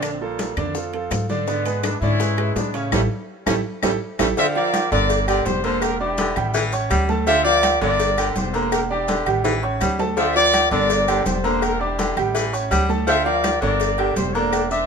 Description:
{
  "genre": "latin, salsa",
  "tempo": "166 BPM",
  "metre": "4/4",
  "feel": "straight",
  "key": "D minor",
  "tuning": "A4 = 440 Hz",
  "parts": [
    { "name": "mellow trumpet section", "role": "melody", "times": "0.0-14.9 s", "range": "G3 to E5", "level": "-22 LUFS", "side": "left 1 dB", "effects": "none" },
    { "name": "clear concert grand piano", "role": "accompaniment", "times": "0.0-14.9 s", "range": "C#3 to D6", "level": "-24 LUFS", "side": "right 4 dB", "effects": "none" },
    { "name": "upright bass", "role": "bass", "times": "0.0-14.9 s", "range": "E1 to A2", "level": "-26 LUFS", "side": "left 1 dB", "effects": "none" },
    { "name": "bongos and cowbell", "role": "percussion", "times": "0.0-14.7 s", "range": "none", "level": "-30 LUFS", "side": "left 10 dB", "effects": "none" },
    { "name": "claves", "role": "percussion", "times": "0.0-14.7 s", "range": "none", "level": "-30 LUFS", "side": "left 8 dB", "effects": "none" },
    { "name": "congas", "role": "percussion", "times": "0.0-14.9 s", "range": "none", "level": "-29 LUFS", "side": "left 2 dB", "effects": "none" },
    { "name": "maracas", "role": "percussion", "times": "0.0-14.9 s", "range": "none", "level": "-36 LUFS", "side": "left 5 dB", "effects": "none" },
    { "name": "timbales and agogo bells", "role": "percussion", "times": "0.0-14.7 s", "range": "none", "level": "-28 LUFS", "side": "right 6 dB", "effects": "none" },
    { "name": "raspy baritone saxophone", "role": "second line", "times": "4.4-14.6 s", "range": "D3 to G3", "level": "-26 LUFS", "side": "left 4 dB", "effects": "none" }
  ],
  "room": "light reverb",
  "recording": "minimal, uncompressed stereo recording",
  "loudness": "-18 LUFS",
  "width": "side -6 dB against mid",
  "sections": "0.0-4.4 A section; 4.4-14.9 B section",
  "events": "band accent 2.9-4.4; drum fill 3.5-4.4, 9.4-10.2",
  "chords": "0.0 Bbmaj7; 1.5 E7/G#; 2.9 A7; 4.4 Dm; 5.1 Em7b5; 6.5 A7; 7.3 Dm7; 8.0 Gm; 8.7 Em7b5; 9.4 A7; 10.2 Dm7; 10.9 Gm; 11.6 Em7b5; 12.3 A7; 13.1 Dm7; 13.8 Gm"
}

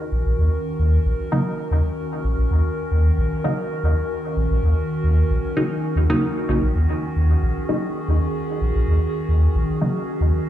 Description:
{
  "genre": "dub techno",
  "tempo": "113 BPM",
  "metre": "4/4",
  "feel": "swing 53% on 16ths",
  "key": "Eb minor",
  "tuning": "A4 = 440 Hz",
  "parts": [
    { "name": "warbly tape-like pad", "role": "sustained chords", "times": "0.0-10.5 s", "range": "Eb3 to Bb4", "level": "-25 LUFS", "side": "equal", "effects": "chorus, built-in reverb, phaser" },
    { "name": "warm sub bass", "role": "bass", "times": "0.1-10.3 s", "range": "Bb1 to Eb2", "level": "-17 LUFS", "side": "equal", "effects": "tube saturation" },
    { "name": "filtered dub chord stab", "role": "stabs", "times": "1.3-9.9 s", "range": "Db3 to Eb4", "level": "-24 LUFS", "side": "equal", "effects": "chorus, phaser, cassette tape, dub echo" }
  ],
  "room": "light reverb",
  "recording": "played on a big sound system in a bare room, large studio reverb",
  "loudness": "-18 LUFS",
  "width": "side -12 dB against mid",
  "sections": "0.0-10.5 A section",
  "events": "none",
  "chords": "0.0 Ebm7"
}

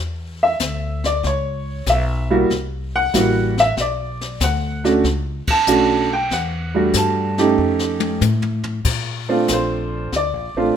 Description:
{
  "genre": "jazz piano trio",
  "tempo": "94 BPM",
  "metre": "4/4",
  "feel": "swing 69% on 8ths",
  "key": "unclear",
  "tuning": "A4 = 440 Hz",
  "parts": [
    { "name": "upright bass", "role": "bass", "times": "0.0-10.7 s", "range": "A1 to Bb2", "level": "-23 LUFS", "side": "left 1 dB", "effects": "none" },
    { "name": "warm upright piano", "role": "melody", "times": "0.4-10.8 s", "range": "G3 to A5", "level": "-18 LUFS", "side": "right 2 dB", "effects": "none" },
    { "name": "jazz brush drum kit", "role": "drums", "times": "0.6-10.8 s", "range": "brushed snare drum, crash cymbal, hi-hat, kick drum, ride cymbal, snare drum, toms", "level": "-24 LUFS", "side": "left 4 dB", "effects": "none" }
  ],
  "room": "light reverb",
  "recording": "minimal, uncompressed stereo recording",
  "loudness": "-17 LUFS",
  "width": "side -8 dB against mid",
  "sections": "0.0-8.9 A section; 8.9-10.8 B section",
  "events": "band accent 5.4-5.7; drum fill 7.6-8.9",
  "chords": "0.0 E7(no3); 1.2 C#m7; 2.5 C7#11; 3.8 Bm9; 6.3 Em11; 7.6 Faug7; 8.9 Bbmaj9"
}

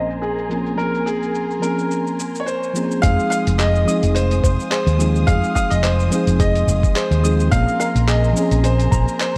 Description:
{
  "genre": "sunset chillout",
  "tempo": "107 BPM",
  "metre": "4/4",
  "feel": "swing 55% on 16ths",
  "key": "unclear",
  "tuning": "A4 = 440 Hz",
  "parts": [
    { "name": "mellow FM electric piano", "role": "accompaniment", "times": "0.0-9.4 s", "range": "F3 to Ab4", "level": "-24 LUFS", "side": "equal", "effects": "chorus, digital delay" },
    { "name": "dark studio string section", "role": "sustained chords", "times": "0.0-9.4 s", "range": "Ab4 to Eb6", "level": "-34 LUFS", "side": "equal", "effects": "none" },
    { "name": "woody fretless electric bass", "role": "bass", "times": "0.0-9.0 s", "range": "F1 to Eb2", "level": "-20 LUFS", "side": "equal", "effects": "none" },
    { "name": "wind-like tuned noise texture", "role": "texture", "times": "0.0-3.0 s", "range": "Ab5", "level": "-43 LUFS", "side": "equal", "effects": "none" },
    { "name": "dusty soul sampler-style drum kit", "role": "drums", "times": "0.1-9.3 s", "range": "handclaps, hi-hat, shaker", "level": "-30 LUFS", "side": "equal", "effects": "overdrive" },
    { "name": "bright grand piano", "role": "melody", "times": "0.2-9.4 s", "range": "Ab4 to F5", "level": "-25 LUFS", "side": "equal", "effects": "digital delay" },
    { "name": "steel pan", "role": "arpeggios", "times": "3.0-9.2 s", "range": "Ab4 to Eb6", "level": "-31 LUFS", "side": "equal", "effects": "digital delay" },
    { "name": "electronic kick drum", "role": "drums", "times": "3.0-9.0 s", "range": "none", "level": "-20 LUFS", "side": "equal", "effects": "overdrive" }
  ],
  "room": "moderate lush hall reverb, RT60 1.8 s",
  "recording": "dark, warm production, low-pass filter",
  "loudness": "-18 LUFS",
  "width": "mono",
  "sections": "0.0-3.0 A section; 3.0-9.4 B section",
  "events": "filter sweep 0.0-3.0",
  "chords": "0.0 Bbm9; 3.0 Fm7; 7.5 Bbm9"
}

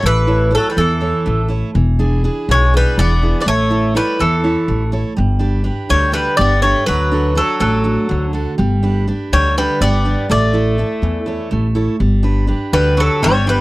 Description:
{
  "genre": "greek folk, Greek bouzouki band",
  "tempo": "246 BPM (eighths)",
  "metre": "7/8",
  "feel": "straight",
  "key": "unclear",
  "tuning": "A4 = 441 Hz",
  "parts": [
    { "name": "Greek bouzouki", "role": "melody", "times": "0.0-13.6 s", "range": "A4 to D5", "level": "-17 LUFS", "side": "equal", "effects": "none" },
    { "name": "Greek bouzouki", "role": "second line", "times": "0.0-13.6 s", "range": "E3 to B3", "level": "-22 LUFS", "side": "left 1 dB", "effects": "none" },
    { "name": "picked steel-string acoustic guitar", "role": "accompaniment", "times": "0.0-13.6 s", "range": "B2 to E5", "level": "-20 LUFS", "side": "right 2 dB", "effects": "none" },
    { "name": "upright bass", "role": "bass", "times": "0.0-13.6 s", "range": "E1 to E2", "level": "-16 LUFS", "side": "equal", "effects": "none" }
  ],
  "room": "little or no reverb",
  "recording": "dry, close 1970s-style studio recording",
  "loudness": "-13 LUFS",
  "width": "side -20 dB against mid",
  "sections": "0.0-12.0 A section; 12.0-13.6 A section",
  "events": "none",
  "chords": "0.0 A; 1.8 E7; 3.5 A; 5.2 G; 6.9 D; 8.6 G; 10.3 A; 12.0 G"
}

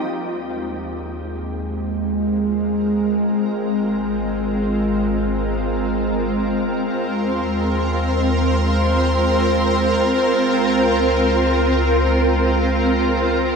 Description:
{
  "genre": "ambient",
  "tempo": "free time",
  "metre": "none",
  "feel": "none",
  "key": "unclear",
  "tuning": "A4 = 439 Hz",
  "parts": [
    { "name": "shimmering ambient pad", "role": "sustained chords", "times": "0.0-13.6 s", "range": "Bb3 to Bb4", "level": "-20 LUFS", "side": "equal", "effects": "chorus, built-in reverb" },
    { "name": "clean electric guitar", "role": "arpeggios", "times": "0.0-1.3 s", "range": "C4 to G5", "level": "-34 LUFS", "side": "equal", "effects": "tremolo, ping-pong delay" },
    { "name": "bowed-like drone", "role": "drone", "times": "0.0-13.6 s", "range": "Ab3 to C4", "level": "-22 LUFS", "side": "right 1 dB", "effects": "built-in reverb" },
    { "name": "dark studio violin section", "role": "texture", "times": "0.0-0.1, 6.9-13.6 s", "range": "C5 to C6", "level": "-25 LUFS", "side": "left 1 dB", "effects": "none" },
    { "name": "round analog bass", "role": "bass", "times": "0.1-13.6 s", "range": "Ab1 to Eb2", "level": "-24 LUFS", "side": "equal", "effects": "none" }
  ],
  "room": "wet huge ambient reverb, RT60 8.0 s",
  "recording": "none",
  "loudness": "-17 LUFS",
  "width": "side -5 dB against mid",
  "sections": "0.1-13.6 A section",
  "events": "fade-in on ambient pad 0.1-13.6; fade-in on analog synth bass 0.1-13.6",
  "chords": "0.1 Ebadd9; 3.5 Ab; 6.9 Ebsus2; 10.4 Db"
}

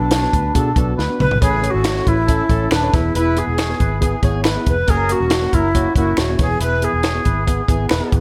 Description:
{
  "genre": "uptempo 1960s-style soul",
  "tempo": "139 BPM",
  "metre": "4/4",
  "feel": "straight",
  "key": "unclear",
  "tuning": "A4 = 439 Hz",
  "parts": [
    { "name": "mellow tenor recorder", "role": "melody", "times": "0.0-7.7 s", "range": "D4 to B4", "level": "-22 LUFS", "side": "equal", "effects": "none" },
    { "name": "warm horn section", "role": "second line", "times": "0.0-8.2 s", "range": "A#3 to C#5", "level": "-29 LUFS", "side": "equal", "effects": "none" },
    { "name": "tine electric piano", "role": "accompaniment", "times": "0.0-8.2 s", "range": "E3 to E5", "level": "-28 LUFS", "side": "equal", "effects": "overdrive" },
    { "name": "vintage muted fingered electric bass", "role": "bass", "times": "0.0-8.2 s", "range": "D#1 to B2", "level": "-24 LUFS", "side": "equal", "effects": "none" },
    { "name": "compact cocktail drum kit", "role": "drums", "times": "0.1-8.2 s", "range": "hi-hat, kick drum, snare drum, toms", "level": "-21 LUFS", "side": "equal", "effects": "none" },
    { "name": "finger snaps", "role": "percussion", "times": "1.9-8.0 s", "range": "none", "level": "-32 LUFS", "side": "equal", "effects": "none" }
  ],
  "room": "light reverb",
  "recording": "none",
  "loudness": "-17 LUFS",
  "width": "mono",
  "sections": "0.0-8.2 A section",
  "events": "drum fill 1.0-1.4",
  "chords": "0.0 Bm; 1.4 A; 2.9 E; 4.9 F#; 6.4 E"
}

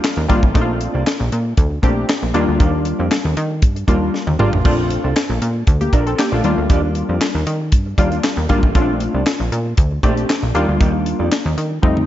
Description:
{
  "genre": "early-eighties boogie funk",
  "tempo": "117 BPM",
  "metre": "4/4",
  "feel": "straight",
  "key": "unclear",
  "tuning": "A4 = 440 Hz",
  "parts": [
    { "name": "tight funk drum kit", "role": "drums", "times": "0.0-12.1 s", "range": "handclaps, hi-hat, kick drum, snare drum, splash cymbal, toms", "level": "-17 LUFS", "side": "equal", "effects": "none" },
    { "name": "mellow electric guitar", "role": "riff", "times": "0.2-12.0 s", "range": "Bb3 to D5", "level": "-26 LUFS", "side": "right 3 dB", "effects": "wide subtle chorus" },
    { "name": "plucky analog bass", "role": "bass", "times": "0.2-12.1 s", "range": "Ab1 to Eb3", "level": "-20 LUFS", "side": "equal", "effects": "none" },
    { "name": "funky polysynth comp", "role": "accompaniment", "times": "0.3-12.0 s", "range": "G3 to Bb4", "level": "-20 LUFS", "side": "left 2 dB", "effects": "chorus" }
  ],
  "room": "moderate lush hall reverb, RT60 2.3 s",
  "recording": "dreamy mix soaked in reverb, nothing above 7.7 kHz",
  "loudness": "-15 LUFS",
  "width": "side -12 dB against mid",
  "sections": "0.0-12.1 A section",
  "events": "drum fill 4.1-4.7, 11.8",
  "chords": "0.0 Ebmaj7; 0.5 Bbmaj7; 2.3 Ebmaj7; 4.7 Bbmaj7; 6.4 Ebmaj7; 8.8 Bbmaj7; 10.5 Ebmaj7"
}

